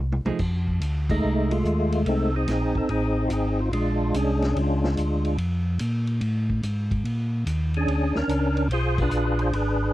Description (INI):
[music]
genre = soul jazz organ trio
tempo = 144 BPM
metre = 4/4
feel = swing 67% on 8ths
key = unclear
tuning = A4 = 440 Hz
[part]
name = mellow tonewheel organ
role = bass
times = 0.0-9.9 s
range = G#1 to Bb2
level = -24 LUFS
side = equal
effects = slow rotary speaker
[part]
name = vintage drum kit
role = drums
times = 0.1-9.7 s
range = crash cymbal, hi-hat, kick drum, ride cymbal, snare drum, toms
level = -34 LUFS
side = equal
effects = none
[part]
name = percussive tonewheel organ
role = melody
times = 1.1-9.9 s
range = G#3 to C5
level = -24 LUFS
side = equal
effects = slow rotary speaker, overdrive, chorus vibrato
[sound]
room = little or no reverb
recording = dry, close 1970s-style studio recording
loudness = -22 LUFS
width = side -15 dB against mid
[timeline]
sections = 0.4-9.9 A section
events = drum fill 0.0-0.4; band accent 1.0, 8.9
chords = 0.4 F7#9; 3.7 Bb7#9; 5.4 F; 7.0 Bb7#9; 8.7 Bdim7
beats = | 0.40 0.81 1.23 1.65 | 2.06 2.48 2.90 3.31 | 3.73 4.14 4.56 4.97 | 5.39 5.80 6.22 6.63 | 7.05 7.46 7.88 8.29 | 8.71 9.12 9.54